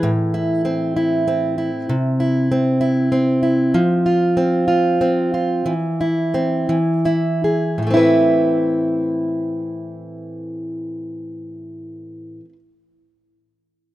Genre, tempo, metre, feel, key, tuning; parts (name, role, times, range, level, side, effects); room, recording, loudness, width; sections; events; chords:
pop; 50-65 BPM (dotted quarters); 6/8; straight; A minor; A4 = 440 Hz
fingerpicked plugged-in steel-string acoustic guitar; solo; 0.0-12.6 s; A2 to B4; -17 LUFS; equal
light reverb, studio reverb; rough home demo mix; -16 LUFS; side -15 dB against mid
0.0-7.8 A section; 7.8-12.6 B section
slowing down 3.7-7.8
0.0 Am; 1.9 C; 3.7 F5; 5.6 C/E; 6.7 E; 7.8 Amadd9